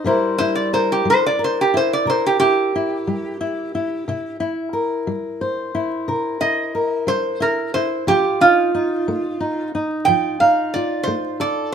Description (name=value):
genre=acoustic country blues, solo or duo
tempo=60 BPM (dotted quarters)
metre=12/8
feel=straight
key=C mixolydian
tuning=A4 = 440 Hz
part: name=fingerpicked steel-string acoustic guitar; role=accompaniment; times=0.0-11.7 s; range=C3 to C5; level=-22 LUFS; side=left 2 dB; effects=none
part: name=metal-body resonator slide guitar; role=melody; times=0.4-11.7 s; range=F4 to G5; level=-18 LUFS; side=right 2 dB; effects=none
room=moderate studio reverb, RT60 0.7 s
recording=minimal, uncompressed stereo recording, vinyl crackle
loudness=-17 LUFS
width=side -7 dB against mid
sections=0.0-11.7 A section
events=resonator guitar played with a steel bar solo 0.0-11.7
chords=0.1 C7; 8.1 F7